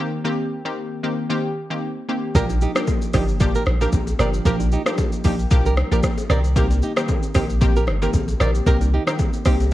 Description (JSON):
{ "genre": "afrobeats", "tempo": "114 BPM", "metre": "4/4", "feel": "swing 55% on 16ths", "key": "unclear", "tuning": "A4 = 440 Hz", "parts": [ { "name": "analog pluck", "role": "accompaniment", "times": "0.0-9.7 s", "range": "Eb3 to G4", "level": "-24 LUFS", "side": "left 1 dB", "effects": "chorus" }, { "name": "congas and bongos", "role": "percussion", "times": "2.3-9.7 s", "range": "none", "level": "-31 LUFS", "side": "left 3 dB", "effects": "none" }, { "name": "flamenco guitar", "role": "riff", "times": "2.4-9.6 s", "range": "Eb4 to D5", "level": "-26 LUFS", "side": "right 4 dB", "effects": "tape echo" }, { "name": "punchy sub bass", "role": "bass", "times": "2.4-9.7 s", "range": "G1 to C2", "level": "-20 LUFS", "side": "equal", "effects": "none" }, { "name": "afro-pop drum kit", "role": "drums", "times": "2.4-9.7 s", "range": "hi-hat, kick drum, rim click, shaker", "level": "-21 LUFS", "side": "equal", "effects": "overdrive" } ], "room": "digital ambience", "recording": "worn, warbling old tape, cassette tape, warbly pitch drift", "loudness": "-18 LUFS", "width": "side -15 dB against mid", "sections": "0.0-9.7 A section", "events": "none", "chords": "0.0 Cm7; 2.4 Bb6; 6.3 Cm7", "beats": "| 0.25 0.77 1.30 1.82 | 2.35 2.88 3.40 3.93 | 4.46 4.98 5.51 6.04 | 6.56 7.09 7.61 8.14 | 8.67 9.19 9.72" }